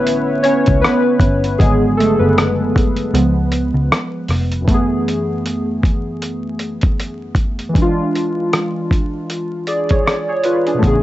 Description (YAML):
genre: lo-fi hip hop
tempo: 78 BPM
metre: 4/4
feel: swing 57% on 16ths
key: F# minor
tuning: A4 = 440 Hz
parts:
  - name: warbly lo-fi synth keys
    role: accompaniment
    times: 0.0-11.0 s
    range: F#2 to E5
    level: -16 LUFS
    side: equal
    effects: chorus, low-pass filter
  - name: vintage muted picked electric bass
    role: bass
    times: 0.0-4.6, 10.8-11.0 s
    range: E#1 to C#2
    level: -18 LUFS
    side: equal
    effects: none
  - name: dusty soul sampler-style drum kit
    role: drums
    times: 0.1-11.0 s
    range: hi-hat, kick drum, rim click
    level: -16 LUFS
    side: equal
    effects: overdrive, vintage 12-bit sampler grit
room: light reverb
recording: vinyl crackle, nothing above 8.0 kHz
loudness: -14 LUFS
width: side -15 dB against mid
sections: 0.0-4.7 A section; 4.7-11.0 B section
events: synth keys solo 0.0-4.7; break 3.1-4.7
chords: 0.0 Bm9; 1.6 G#m7b5; 3.1 C#7; 4.7 F#m11; 7.7 E7b9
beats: 0.06 0.83 | 1.59 2.37 3.13 3.90 | 4.67 5.44 6.21 6.98 | 7.75 8.52 9.29 10.06 | 10.83